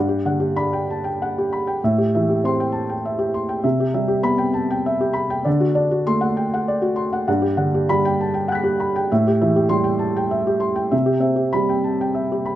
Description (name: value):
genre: neoclassical minimalist piano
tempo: 98 BPM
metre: 3/4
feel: rubato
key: A dorian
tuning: A4 = 440 Hz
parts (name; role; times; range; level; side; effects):
- felt-muted upright piano; solo; 0.0-12.6 s; G2 to B6; -18 LUFS; equal; none
room: light reverb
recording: rough home demo mix, faint mains hum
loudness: -18 LUFS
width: side -13 dB against mid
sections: 0.0-12.6 A section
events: none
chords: 0.0 Gmaj7; 1.8 Am7; 3.6 Cmaj7; 5.5 D7; 7.3 Gmaj7; 9.1 Am7; 10.9 Cmaj7